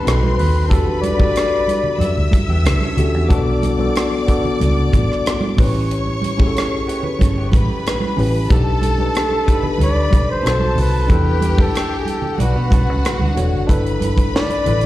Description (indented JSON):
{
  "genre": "lush 1970s-style soul",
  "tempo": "92 BPM",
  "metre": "4/4",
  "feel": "straight",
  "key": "B minor",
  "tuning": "A4 = 440 Hz",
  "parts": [
    { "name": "warm flugelhorn", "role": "melody", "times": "0.0-2.3, 8.5-14.9 s", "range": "G#4 to D5", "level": "-22 LUFS", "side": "left 1 dB", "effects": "plate reverb, slapback echo" },
    { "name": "mellow tine electric piano", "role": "accompaniment", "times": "0.0-14.9 s", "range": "B3 to C#5", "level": "-22 LUFS", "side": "left 2 dB", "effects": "medium stereo tremolo, plate reverb, slapback echo" },
    { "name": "clear studio string section", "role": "second line", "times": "0.1-14.9 s", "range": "C4 to E6", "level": "-26 LUFS", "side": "left 1 dB", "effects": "plate reverb, slapback echo" },
    { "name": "vintage muted fingered electric bass", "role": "bass", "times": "0.1-14.9 s", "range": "E1 to B2", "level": "-18 LUFS", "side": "equal", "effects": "none" },
    { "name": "tight funk drum kit", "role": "drums", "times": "0.1-14.9 s", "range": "hi-hat, kick drum, rim click, snare drum", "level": "-18 LUFS", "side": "equal", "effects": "none" },
    { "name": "congas", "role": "percussion", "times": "0.2-14.9 s", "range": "none", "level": "-26 LUFS", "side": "right 4 dB", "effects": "slapback echo" },
    { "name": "electric guitar through a small old amp", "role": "riff", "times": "2.5-8.3, 12.4-13.7 s", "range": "F#3 to D5", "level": "-29 LUFS", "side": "right 4 dB", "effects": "none" }
  ],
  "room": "little or no reverb",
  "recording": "live gig heard through the venue's PA, recital hall reverb",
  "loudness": "-14 LUFS",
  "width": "side -15 dB against mid",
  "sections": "0.0-13.7 A section; 13.7-14.9 B section",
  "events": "none",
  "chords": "0.1 B7b9; 0.7 Em11; 3.3 Bm9; 5.6 A7; 8.5 B7alt; 10.4 B7b9; 11.1 Em7; 12.4 Bm9; 13.7 G6"
}